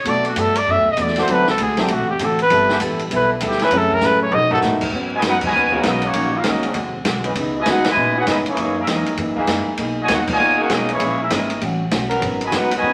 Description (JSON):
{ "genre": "jazz, big band swing", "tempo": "198 BPM", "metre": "4/4", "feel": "swing 63% on 8ths", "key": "G# minor from 4.9 s", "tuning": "A4 = 440 Hz", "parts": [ { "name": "warm trumpet", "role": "melody", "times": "0.0-4.6 s", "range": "D4 to E5", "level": "-20 LUFS", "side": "equal", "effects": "none" }, { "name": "upright bass", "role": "bass", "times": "0.0-12.9 s", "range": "F#1 to B2", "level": "-31 LUFS", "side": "equal", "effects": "none" }, { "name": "vintage hollow-body jazz guitar", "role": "accompaniment", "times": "0.1-12.9 s", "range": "F#2 to A4", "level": "-26 LUFS", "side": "equal", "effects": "none" }, { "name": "warm baby grand piano", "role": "accompaniment", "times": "0.1-4.3 s", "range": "F#3 to A4", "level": "-27 LUFS", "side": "equal", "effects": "none" }, { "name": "open jazz drum kit", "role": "drums", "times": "0.1-12.9 s", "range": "crash cymbal, hi-hat, kick drum, ride cymbal, snare drum, toms", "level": "-26 LUFS", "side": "equal", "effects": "none" }, { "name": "bright trombone section", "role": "sustained chords", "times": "1.2-12.5 s", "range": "C#3 to B4", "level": "-27 LUFS", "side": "equal", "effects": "none" }, { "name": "mellow trombone section", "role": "second line", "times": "5.1-12.9 s", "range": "A#2 to F#4", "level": "-28 LUFS", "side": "equal", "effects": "none" }, { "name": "warm trumpet section", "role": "melody", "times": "5.2-12.9 s", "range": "A#3 to G#5", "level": "-22 LUFS", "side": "equal", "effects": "none" } ], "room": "wet studio reverb, RT60 0.9 s", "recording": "vinyl crackle", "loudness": "-18 LUFS", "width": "mono", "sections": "0.0-4.9 A section; 4.9-12.9 B section", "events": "trumpet solo 0.0-4.9; drum fill 4.0-4.6; band accent 5.4, 7.8, 10.2", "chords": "0.1 Bm7; 1.3 D7; 2.5 G69; 3.7 F#m7; 4.3 B7; 4.9 G#m11; 6.1 D#m7; 6.7 D7#11; 7.4 C#m9; 8.6 F#13; 9.8 Bmaj13; 11.0 A#m7b5; 11.6 A13; 12.2 G#m11" }